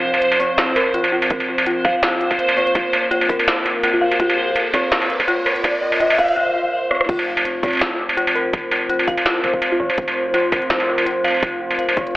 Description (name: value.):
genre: half-time drum and bass.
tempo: 166 BPM.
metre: 4/4.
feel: swing 55% on 16ths, half-time.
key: unclear.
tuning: A4 = 440 Hz.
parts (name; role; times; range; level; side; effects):
deep dark ambient pad; sustained chords; 0.0-12.2 s; C4 to C5; -26 LUFS; equal; chorus, built-in reverb, sidechain pumping.
dark detuned synth bell; arpeggios; 0.0-12.2 s; C4 to F5; -21 LUFS; left 1 dB; chorus, phaser, tape echo.
long sustained 808-style bass; bass; 0.0-12.1 s; F1 to Ab1; -41 LUFS; equal; high-pass filter.
backwards swelling texture; texture; 0.0-6.4 s; C5; -23 LUFS; right 1 dB; built-in reverb.
industrial drum kit; drums; 0.1-12.1 s; crash cymbal, hi-hat, rim click, snare drum, struck metal; -19 LUFS; equal; none.
electronic kick drum; drums; 1.3-12.0 s; none; -24 LUFS; equal; none.
riser; sound effects; 4.1-6.4 s; none; -24 LUFS; equal; none.
buzzing marimba with soft mallets; melody; 3.9-4.1, 9.7-9.9 s; F4; -27 LUFS; equal; none.
room: wet spring reverb, RT60 1.6 s.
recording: echo-heavy mix, high-pass filter, telephone sound.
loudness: -16 LUFS.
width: side -18 dB against mid.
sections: 0.0-7.1 A section; 7.1-12.2 B section.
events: build-up 0.0-7.1; filter sweep on ambient pad 0.0-7.1; riser 4.1-6.4; break 6.4-7.1; drum fill 6.9; drop 7.1-12.2.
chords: 0.0 F5.